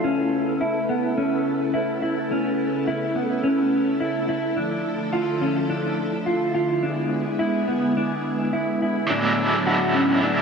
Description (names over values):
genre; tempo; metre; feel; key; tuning
dream pop; 106 BPM; 4/4; straight; A major; A4 = 440 Hz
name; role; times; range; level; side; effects
ensemble organ-string; sustained chords; 0.0-10.4 s; A2 to A4; -25 LUFS; equal; ensemble chorus
mellow electric guitar; arpeggios; 0.0-10.4 s; B3 to F#4; -23 LUFS; equal; lush chorus, analog delay
crunchy overdriven guitar; accompaniment; 9.1-10.4 s; A2 to E4; -21 LUFS; right 2 dB; tremolo, lush chorus, analog delay
room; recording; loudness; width
wet spring reverb, RT60 2.8 s; echo-heavy mix; -20 LUFS; side -5 dB against mid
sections
0.0-9.1 A section; 9.1-10.4 B section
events
none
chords
0.0 Aadd9; 4.6 Dmadd9; 6.8 E7; 9.1 E9/A